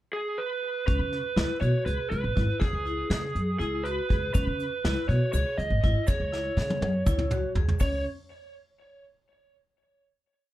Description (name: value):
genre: progressive instrumental, band music in an uneven meter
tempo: 242 BPM (eighths)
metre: 7/8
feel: straight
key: C# minor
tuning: A4 = 442 Hz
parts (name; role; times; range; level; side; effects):
- lead guitar through a small cranked amp; melody; 0.1-8.0 s; G#4 to D#5; -31 LUFS; right 2 dB; overdrive, digital delay
- vibraphone with hard mallets; arpeggios; 0.9-8.0 s; C#4 to G#4; -35 LUFS; left 4 dB; none
- upright bass; bass; 0.9-8.0 s; G#1 to C#3; -28 LUFS; equal; none
- vintage brush drum kit; drums; 0.9-7.9 s; hi-hat, kick drum, snare drum, toms; -28 LUFS; equal; none
- tube shaker; percussion; 4.3-8.0 s; none; -46 LUFS; right 5 dB; none
room: light reverb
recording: dark, warm production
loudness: -25 LUFS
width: side -15 dB against mid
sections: 0.0-0.9 pickup bar; 0.9-7.8 groove; 7.8-9.5 final note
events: drum fill 6.3-7.8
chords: 0.0 N.C.; 0.9 C#m7; 7.8 N.C.